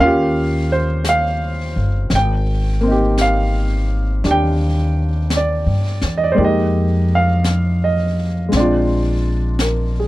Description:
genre	jazz ballad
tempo	56 BPM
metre	4/4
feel	swing 68% on 8ths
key	unclear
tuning	A4 = 440 Hz
part	clear grand piano	accompaniment	0.0-10.1 s	Ab3 to G5	-18 LUFS	right 1 dB	none
part	upright bass	bass	0.0-10.1 s	G1 to G2	-18 LUFS	equal	none
part	jazz brush drum kit	drums	1.0-10.1 s	brushed snare drum, hi-hat, snare drum	-27 LUFS	left 1 dB	none
room	light reverb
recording	dry, close 1970s-style studio recording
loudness	-15 LUFS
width	side -17 dB against mid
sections	0.0-10.1 A section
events	none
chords	0.0 Eb9; 2.1 Abmaj7; 6.4 Fm11; 8.5 Bb9

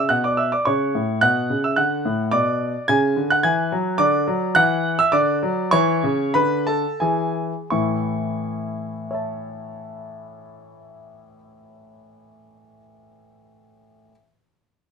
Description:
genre	classical-period piano sonatina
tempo	85-109 BPM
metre	3/4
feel	straight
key	A major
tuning	A4 = 441 Hz
part	warm concert grand piano	solo	0.0-14.1 s	A2 to G#6	-19 LUFS	equal	none
room	light reverb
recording	minimal, uncompressed stereo recording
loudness	-18 LUFS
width	side -6 dB against mid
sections	0.0-7.7 A section; 7.7-11.9 B section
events	slowing down 3.2-7.7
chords	0.0 E5; 0.7 A; 1.8 D; 2.3 G#dim/B; 3.4 Eadd9; 4.0 D; 5.7 E7sus4; 7.0 E; 7.7 A

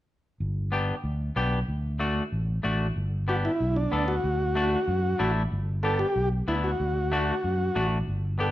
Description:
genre	latin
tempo	188 BPM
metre	4/4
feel	straight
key	G major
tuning	A4 = 440 Hz
part	fingered electric bass	bass	0.4-8.5 s	G1 to F#2	-28 LUFS	equal	none
part	semi-hollow electric guitar	accompaniment	0.7-8.5 s	A3 to A4	-29 LUFS	left 2 dB	none
part	combo organ	melody	3.3-8.5 s	D4 to A4	-28 LUFS	equal	none
room	moderate large studio reverb, RT60 1.1 s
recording	lossy compression artefacts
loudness	-24 LUFS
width	side -14 dB against mid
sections	0.4-3.0 A section; 3.0-8.5 B section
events	none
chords	0.4 G; 1.7 D; 3.0 G; 4.2 D; 5.5 G; 6.8 D

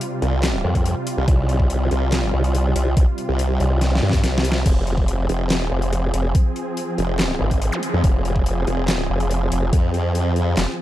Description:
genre	heavy wobble dubstep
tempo	142 BPM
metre	4/4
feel	half-time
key	F minor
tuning	A4 = 438 Hz
part	supersaw chords	sustained chords	0.0-10.8 s	C3 to Ab4	-26 LUFS	right 1 dB	sidechain pumping, low-pass filter
part	dubstep drum kit	drums	0.0-10.7 s	crash cymbal, handclaps, hi-hat, snare drum	-25 LUFS	left 1 dB	overdrive, studio reverb
part	formant-sweep wobble bass	bass	0.2-10.6 s	F1 to G2	-20 LUFS	equal	chorus, overdrive
part	formant-sweep wobble bass	bass	0.6-10.7 s	F1 to F2	-20 LUFS	equal	chorus, overdrive
part	electronic kick drum	drums	0.8-9.8 s	none	-18 LUFS	equal	overdrive, studio reverb
part	zap	sound effects	7.7-7.8 s	none	-30 LUFS	left 1 dB	none
room	digital ambience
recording	dark, warm production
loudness	-18 LUFS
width	side -14 dB against mid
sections	0.0-10.8 A section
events	drum fill 3.8-4.7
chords	0.0 Csus4; 4.7 Fm

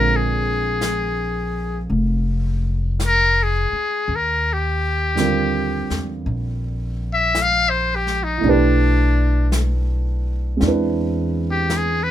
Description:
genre	jazz ballad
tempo	55 BPM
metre	4/4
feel	swing 66% on 8ths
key	unclear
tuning	A4 = 441 Hz
part	trumpet with metal mute	melody	0.0-12.1 s	D4 to F5	-20 LUFS	left 2 dB	none
part	dark concert grand piano	accompaniment	0.0-12.1 s	D3 to B4	-22 LUFS	right 4 dB	none
part	upright bass	bass	0.0-12.1 s	F1 to E2	-21 LUFS	equal	none
part	jazz brush drum kit	drums	0.8-12.1 s	brushed snare drum, hi-hat, snare drum	-29 LUFS	left 2 dB	none
room	light reverb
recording	minimal, uncompressed stereo recording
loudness	-17 LUFS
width	side -11 dB against mid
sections	0.0-12.1 A section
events	muted trumpet solo 0.0-12.1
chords	0.0 Bb7; 4.1 Eb69; 8.4 G69/B; 10.6 E7b13

